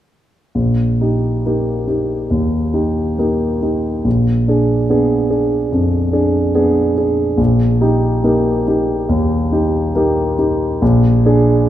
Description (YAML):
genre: classical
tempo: 70 BPM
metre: 4/4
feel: rubato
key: Eb major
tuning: A4 = 441 Hz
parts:
  - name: dark concert grand piano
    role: accompaniment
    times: 0.5-11.7 s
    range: Bb1 to Ab4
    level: -13 LUFS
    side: equal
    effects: none
room: moderate concert hall reverb, RT60 2.4 s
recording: minimal, uncompressed stereo recording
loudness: -13 LUFS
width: side -12 dB against mid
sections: 0.5-11.7 A section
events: none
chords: 0.5 Eb/Bb; 4.1 Bb7b9; 7.4 Eb/Bb; 10.8 Bb7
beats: | 0.54 1.45 2.31 3.18 | 4.06 4.90 5.72 6.56 | 7.39 8.24 9.09 9.95 | 10.81 11.69